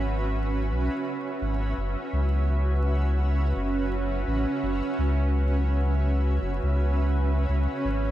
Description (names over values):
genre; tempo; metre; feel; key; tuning
ambient dub; 84 BPM; 4/4; swing 59% on 16ths; unclear; A4 = 439 Hz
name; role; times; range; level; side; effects
granular cloud pad; sustained chords; 0.0-8.1 s; C#4 to E5; -29 LUFS; right 2 dB; built-in reverb
soft dub sub bass; bass; 0.0-8.1 s; F#1 to C#2; -24 LUFS; equal; tube saturation
room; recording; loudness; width
light reverb; vinyl crackle; -23 LUFS; side -13 dB against mid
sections
0.0-8.1 A section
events
none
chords
0.0 C#m; 1.8 F#7(no3); 7.5 C#5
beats
0.34 1.06 | 1.77 2.49 3.20 3.92 | 4.63 5.34 6.06 6.77 | 7.49